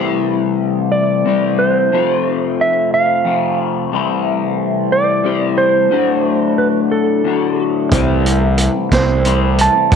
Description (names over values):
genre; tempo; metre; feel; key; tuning
psychedelic rock; 60 BPM (dotted quarters); 6/8; straight; unclear; A4 = 440 Hz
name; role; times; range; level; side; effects
percussive tonewheel organ; sustained chords; 0.0-10.0 s; E3 to D4; -23 LUFS; right 15 dB; slow rotary speaker
electric guitar through a small old amp; riff; 0.0-10.0 s; D2 to C5; -17 LUFS; left 12 dB; flanger
clean lap steel guitar; melody; 0.9-9.9 s; A4 to A5; -16 LUFS; right 3 dB; slapback echo
fuzz fingered electric bass; bass; 7.9-10.0 s; F1 to C2; -16 LUFS; right 2 dB; overdrive
vintage drum kit; drums; 7.9-10.0 s; hi-hat, kick drum, snare drum; -18 LUFS; right 2 dB; none
room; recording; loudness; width
light reverb, small room ambience; 1960s-style stereo with parts hard left and right; -13 LUFS; side -6 dB against mid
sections
0.0-10.0 A section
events
none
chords
0.0 C6; 1.9 F; 3.9 C6; 5.9 D; 7.9 C6